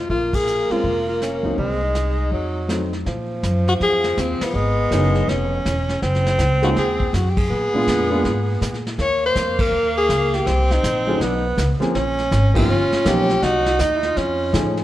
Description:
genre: jazz, small-group swing and bop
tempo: 162 BPM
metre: 4/4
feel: swing 64% on 8ths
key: Bb minor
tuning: A4 = 435 Hz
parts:
  - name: breathy tenor saxophone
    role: melody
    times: 0.0-14.5 s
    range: Cb4 to Db5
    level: -22 LUFS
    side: left 2 dB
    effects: none
  - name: upright bass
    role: bass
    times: 0.0-14.8 s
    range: E1 to Bb2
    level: -22 LUFS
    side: equal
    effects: none
  - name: breathy tenor saxophone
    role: second line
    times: 0.1-14.8 s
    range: F3 to Eb4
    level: -23 LUFS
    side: right 2 dB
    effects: none
  - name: vintage brush drum kit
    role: drums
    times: 0.1-14.8 s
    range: brushed snare drum, crash cymbal, hi-hat, kick drum, ride cymbal, snare drum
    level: -27 LUFS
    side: equal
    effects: none
  - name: warm baby grand piano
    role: accompaniment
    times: 0.7-8.2, 11.1-14.8 s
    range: Bb2 to Bb4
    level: -24 LUFS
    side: equal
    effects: none
room: light reverb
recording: none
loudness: -17 LUFS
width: side -14 dB against mid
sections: 0.0-3.1 A section; 3.1-14.8 B section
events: band accent 0.3, 4.4, 7.3, 9.5, 12.5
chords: 0.1 Bbm9; 1.6 Ab/C; 2.3 F7b9; 3.1 Bb7sus4; 4.5 Abm11; 5.3 Db7#9; 6.0 Gbsus2; 7.5 Bb7b9; 9.0 Ebsus2; 10.5 Cm7; 11.2 Bsus2; 11.9 Bbm7; 12.7 G7alt; 13.4 Cdim; 14.2 F7alt

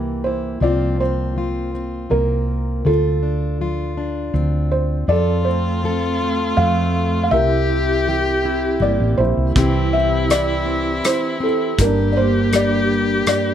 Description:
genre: folk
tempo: 81 BPM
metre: 3/4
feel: straight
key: unclear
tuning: A4 = 440 Hz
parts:
  - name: fingerpicked plugged-in steel-string acoustic guitar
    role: accompaniment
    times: 0.0-13.5 s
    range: F2 to A4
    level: -24 LUFS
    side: left 3 dB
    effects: none
  - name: woody fretless electric bass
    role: bass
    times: 0.0-13.2 s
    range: G1 to F2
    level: -21 LUFS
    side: right 1 dB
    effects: none
  - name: felt-muted upright piano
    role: melody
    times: 0.2-13.5 s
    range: D4 to F5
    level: -22 LUFS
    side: equal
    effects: none
  - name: clear viola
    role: second line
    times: 5.1-13.5 s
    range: E4 to G4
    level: -24 LUFS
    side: left 4 dB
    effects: none
  - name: vibraphone with medium hard mallets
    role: arpeggios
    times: 5.1-13.5 s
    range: A3 to G4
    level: -25 LUFS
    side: right 5 dB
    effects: none
  - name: loose indie drum kit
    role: drums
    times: 9.6-13.4 s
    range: hi-hat, kick drum, rim click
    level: -20 LUFS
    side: equal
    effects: none
room: light reverb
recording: none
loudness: -16 LUFS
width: side -9 dB against mid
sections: 0.6-9.6 A section; 9.6-13.5 B section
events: none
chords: 0.0 C7; 0.6 C7sus4; 2.9 Dm7; 5.1 F; 7.3 C7; 9.6 C; 11.8 Gm

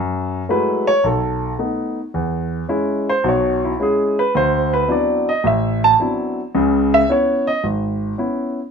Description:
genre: solo jazz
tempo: 109 BPM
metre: 4/4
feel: swing 69% on 8ths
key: unclear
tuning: A4 = 442 Hz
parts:
  - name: warm grand piano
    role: solo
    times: 0.0-8.6 s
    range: G#1 to A5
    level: -16 LUFS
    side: equal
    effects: none
room: moderate studio reverb, RT60 0.7 s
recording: minimal, uncompressed stereo recording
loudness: -16 LUFS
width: side -6 dB against mid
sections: 0.0-8.7 A section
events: grand piano solo 0.0-8.7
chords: 0.0 F#m9; 1.0 B7; 2.1 E6; 4.3 D13; 6.5 C#m7

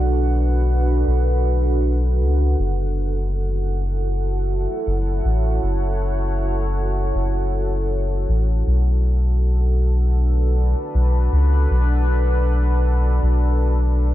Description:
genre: ambient dub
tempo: 79 BPM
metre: 4/4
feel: swing 58% on 16ths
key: B minor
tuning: A4 = 441 Hz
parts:
  - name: deep dark ambient pad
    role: sustained chords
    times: 0.0-14.1 s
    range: D4 to F#5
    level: -25 LUFS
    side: right 1 dB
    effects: chorus, built-in reverb
  - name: soft dub sub bass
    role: bass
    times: 0.0-14.1 s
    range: F#1 to C#2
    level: -18 LUFS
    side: equal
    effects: tube saturation
room: little or no reverb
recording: dark, warm production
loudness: -17 LUFS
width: side -14 dB against mid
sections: 0.0-14.1 A section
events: none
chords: 0.0 Bm7; 2.6 F#m7; 8.7 Bm7

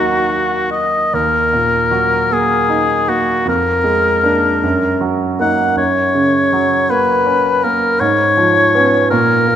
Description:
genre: classical, romantic duo for oboe and grand piano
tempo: 52 BPM (dotted quarters)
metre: 6/8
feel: uneven beats, rubato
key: Eb minor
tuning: A4 = 440 Hz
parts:
  - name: warm oboe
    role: melody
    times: 0.0-9.6 s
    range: Gb4 to Gb5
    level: -13 LUFS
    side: left 2 dB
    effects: none
  - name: clear concert grand piano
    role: accompaniment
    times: 0.0-9.6 s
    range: Eb2 to Eb4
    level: -17 LUFS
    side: right 3 dB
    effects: none
room: moderate concert hall reverb, RT60 2.0 s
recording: none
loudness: -12 LUFS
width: side -9 dB against mid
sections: 0.0-1.1 A section; 1.1-9.6 B section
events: none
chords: 0.0 Ebm; 3.5 Bb7/F; 4.6 Ebm/Gb; 5.8 Gb; 8.0 Db7/Ab

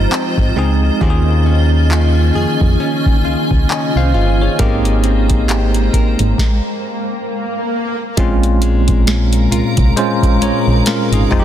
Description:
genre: contemporary R&B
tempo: 67 BPM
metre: 4/4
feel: swing 58% on 16ths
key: Bb dorian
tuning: A4 = 439 Hz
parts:
  - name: bell-like tine electric piano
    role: accompaniment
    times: 0.0-11.4 s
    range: Ab3 to Ab5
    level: -18 LUFS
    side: right 1 dB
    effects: medium stereo tremolo
  - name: granular cloud pad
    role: sustained chords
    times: 0.0-11.4 s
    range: Ab3 to C6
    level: -21 LUFS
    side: right 1 dB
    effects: built-in reverb
  - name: nylon-string guitar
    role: arpeggios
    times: 0.0-11.4 s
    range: Bb2 to Bb4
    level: -22 LUFS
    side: left 5 dB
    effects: tape echo
  - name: solid FM bass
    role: bass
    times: 0.0-11.4 s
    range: F1 to F2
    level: -14 LUFS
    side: equal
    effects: none
  - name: booming analog drum machine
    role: drums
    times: 0.1-11.4 s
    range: handclaps, hi-hat, kick drum, rim click, snare drum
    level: -16 LUFS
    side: equal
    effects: none
  - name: swell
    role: sound effects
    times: 6.4-8.2 s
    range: none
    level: -24 LUFS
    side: left 1 dB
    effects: none
room: digital ambience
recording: dense, heavily limited modern master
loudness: -12 LUFS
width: side -10 dB against mid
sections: 0.0-8.2 A section; 8.2-11.4 B section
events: swell 6.4-8.2; stop 6.4-8.2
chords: 0.0 Fm7; 1.0 Eb9sus4; 4.6 Abmaj9; 8.2 Bbm7

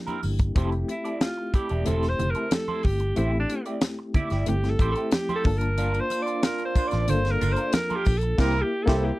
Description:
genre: lush 1970s-style soul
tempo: 92 BPM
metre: 4/4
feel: straight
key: F major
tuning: A4 = 441 Hz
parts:
  - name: barky reed electric piano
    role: accompaniment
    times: 0.0-9.2 s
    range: A3 to A5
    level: -31 LUFS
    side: left 3 dB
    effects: overdrive, fast tremolo
  - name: electric guitar at the edge of break-up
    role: riff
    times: 0.1-9.1 s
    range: C4 to D5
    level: -34 LUFS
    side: right 4 dB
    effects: wah
  - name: tight funk drum kit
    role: drums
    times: 0.1-9.1 s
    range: crash cymbal, hi-hat, kick drum, snare drum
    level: -24 LUFS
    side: equal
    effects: none
  - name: congas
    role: percussion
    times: 0.1-8.1 s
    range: none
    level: -34 LUFS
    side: right 4 dB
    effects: none
  - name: triangle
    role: percussion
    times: 0.1-0.5, 5.8-8.4 s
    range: none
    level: -48 LUFS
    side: left 16 dB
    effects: none
  - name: vintage muted fingered electric bass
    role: bass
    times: 0.2-9.1 s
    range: E1 to C2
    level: -26 LUFS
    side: equal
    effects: none
  - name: breathy alto saxophone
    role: melody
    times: 0.9-9.2 s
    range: D4 to D5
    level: -28 LUFS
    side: equal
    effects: none
  - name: mellow trombone section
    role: stabs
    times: 5.8-9.0 s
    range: Bb3 to G4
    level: -33 LUFS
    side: right 6 dB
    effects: none
room: little or no reverb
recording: dry, close 1970s-style studio recording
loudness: -22 LUFS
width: side -18 dB against mid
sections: 0.6-9.2 A section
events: alto saxophone solo 0.6-9.2; band accent 8.4-9.2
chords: 0.0 C7; 0.6 Fmaj7; 3.2 Am7; 5.5 Gm7; 8.4 C7

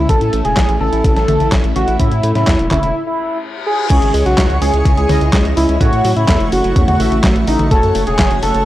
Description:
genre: italo disco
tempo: 126 BPM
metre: 4/4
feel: straight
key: unclear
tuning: A4 = 440 Hz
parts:
  - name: wide unison lead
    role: melody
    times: 0.0-8.7 s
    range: D#4 to A4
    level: -17 LUFS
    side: equal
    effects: analog delay
  - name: string machine, full ensemble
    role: sustained chords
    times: 0.0-8.7 s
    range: A3 to C#6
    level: -23 LUFS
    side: equal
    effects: ensemble chorus
  - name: direct-recorded clean electric guitar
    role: arpeggios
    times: 0.0-8.6 s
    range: C#3 to E4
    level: -25 LUFS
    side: right 2 dB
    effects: tape echo
  - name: round analog bass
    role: bass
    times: 0.0-8.6 s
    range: E1 to A2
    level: -17 LUFS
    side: equal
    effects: transformer saturation
  - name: clean 12-bit digital drum machine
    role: drums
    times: 0.1-8.6 s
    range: crash cymbal, handclaps, hi-hat, snare drum, toms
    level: -20 LUFS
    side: equal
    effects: none
  - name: electronic kick drum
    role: drums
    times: 0.1-8.3 s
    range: none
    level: -15 LUFS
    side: equal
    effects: none
  - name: reverse cymbal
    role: sound effects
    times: 3.2-3.9 s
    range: none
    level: -25 LUFS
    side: left 6 dB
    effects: none
  - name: analog synth brass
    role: stabs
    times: 3.9-8.7 s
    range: A2 to E5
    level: -22 LUFS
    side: equal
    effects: chorus
room: digital ambience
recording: dry, gritty hardware recording, cassette tape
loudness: -11 LUFS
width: side -14 dB against mid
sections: 0.0-3.9 A section; 3.9-8.7 B section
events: break 3.0-3.9; reverse cymbal 3.2-3.9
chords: 0.1 A; 3.9 C#m; 5.8 A6; 7.7 F#m

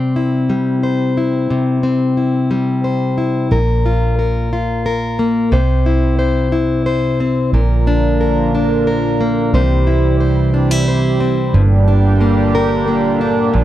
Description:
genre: six-eight pop ballad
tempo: 60 BPM (dotted quarters)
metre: 6/8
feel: straight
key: unclear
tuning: A4 = 435 Hz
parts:
  - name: fingerpicked plugged-in steel-string acoustic guitar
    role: accompaniment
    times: 0.0-13.6 s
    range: G2 to C5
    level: -15 LUFS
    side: left 2 dB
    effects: none
  - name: vintage muted fingered electric bass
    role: bass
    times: 3.5-13.6 s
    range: G1 to C2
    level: -16 LUFS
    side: right 1 dB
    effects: none
  - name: chorused pulse-width pad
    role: sustained chords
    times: 7.5-13.6 s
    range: Bb2 to Bb4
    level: -18 LUFS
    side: right 5 dB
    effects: none
room: light reverb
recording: dry, close 1970s-style studio recording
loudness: -13 LUFS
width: side -13 dB against mid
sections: 0.0-3.5 A section; 3.5-11.5 B section; 11.5-13.6 C section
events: none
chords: 0.0 C; 3.5 Bb5; 5.5 C; 7.5 Bb; 9.5 C; 11.5 Gm

